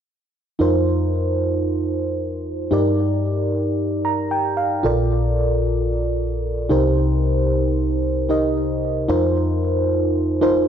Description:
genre	pop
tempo	113 BPM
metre	4/4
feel	straight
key	F mixolydian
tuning	A4 = 440 Hz
part	mellow FM electric piano	solo	0.6-10.7 s	Bb1 to Bb5	-18 LUFS	equal	chorus, ping-pong delay
room	moderate plate reverb, RT60 2.4 s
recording	dark, warm production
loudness	-18 LUFS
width	side -8 dB against mid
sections	0.6-9.1 A section; 9.1-10.7 B section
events	FM electric piano fill 3.8-4.8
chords	0.6 F7sus4; 2.7 Ebmaj7/G; 4.8 Bbmaj7; 6.7 Cm7; 9.1 F7sus4

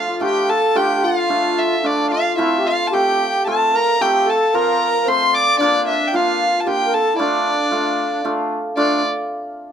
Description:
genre	klezmer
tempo	112 BPM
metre	3/4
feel	straight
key	D minor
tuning	A4 = 440 Hz
part	warm violin	melody	0.0-9.0 s	D5 to D6	-18 LUFS	equal	none
part	accordion	second line	0.0-9.0 s	D4 to D5	-20 LUFS	equal	light tremolo tuning
part	hammered dulcimer	accompaniment	0.0-9.0 s	F3 to F4	-22 LUFS	equal	none
room	moderate small room reverb, RT60 0.5 s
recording	none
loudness	-15 LUFS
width	side -8 dB against mid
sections	0.0-8.8 A section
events	speeding up 0.0-9.7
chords	0.0 Dm; 2.4 F; 5.6 Bb; 7.2 Dm

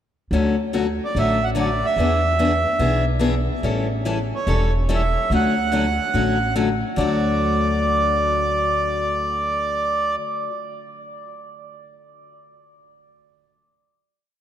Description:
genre	acoustic string swing (jazz manouche)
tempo	144 BPM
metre	4/4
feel	swing 64% on 8ths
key	D major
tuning	A4 = 440 Hz
part	picked steel-string acoustic guitar	accompaniment	0.3-10.5 s	D3 to A4	-23 LUFS	left 3 dB	none
part	upright bass	bass	0.3-10.2 s	E1 to E2	-24 LUFS	equal	none
part	accordion	melody	1.0-10.2 s	C#5 to F#5	-22 LUFS	right 2 dB	none
room	wet cathedral reverb, RT60 5.9 s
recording	in a vast, echoing space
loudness	-18 LUFS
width	side -10 dB against mid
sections	0.3-7.0 A section; 7.0-10.3 final chord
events	none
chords	0.3 Dmaj7; 2.0 E7; 3.6 A7; 5.3 Dmaj7; 7.0 D

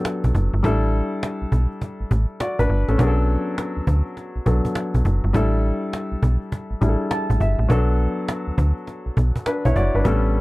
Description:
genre	R&B, new jack swing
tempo	102 BPM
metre	4/4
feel	swing 64% on 16ths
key	B minor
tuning	A4 = 435 Hz
part	warm grand piano	accompaniment	0.0-10.4 s	F#3 to A5	-24 LUFS	left 1 dB	none
part	cajon	drums	0.0-10.4 s	none	-26 LUFS	equal	none
part	slap-like FM bass	bass	0.2-10.4 s	F#1 to D2	-19 LUFS	equal	none
room	little or no reverb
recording	dry, close 1970s-style studio recording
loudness	-19 LUFS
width	side -20 dB against mid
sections	0.0-10.4 A section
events	grand piano fill 6.8-7.7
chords	0.0 Bm7; 0.6 A7sus4; 3.0 Bm7; 5.3 A7sus4; 7.7 Bm7

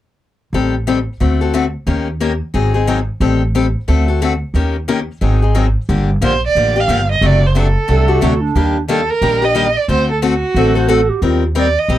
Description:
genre	acoustic string swing (jazz manouche)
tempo	180 BPM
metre	4/4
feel	swing 60% on 8ths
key	G minor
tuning	A4 = 440 Hz
part	picked steel-string acoustic guitar	accompaniment	0.5-12.0 s	C3 to Bb4	-17 LUFS	left 6 dB	none
part	upright bass	bass	0.5-12.0 s	F#1 to Eb2	-16 LUFS	right 1 dB	none
part	warm violin	melody	6.2-12.0 s	F#4 to F5	-16 LUFS	right 4 dB	none
part	breathy clarinet	second line	7.9-11.5 s	D4 to C5	-18 LUFS	right 6 dB	none
room	little or no reverb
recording	dry, close 1970s-style studio recording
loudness	-13 LUFS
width	side -13 dB against mid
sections	0.5-5.9 A section; 5.9-12.0 B section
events	none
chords	0.5 Am7b5; 1.2 D7; 1.9 Eb7; 2.5 Ab7; 3.2 Am7b5; 3.9 D7; 4.5 Eb7; 5.2 Ab7; 5.9 Gm7; 7.2 D7/F#; 8.6 Ebmaj7; 9.9 D7; 11.2 Eb6

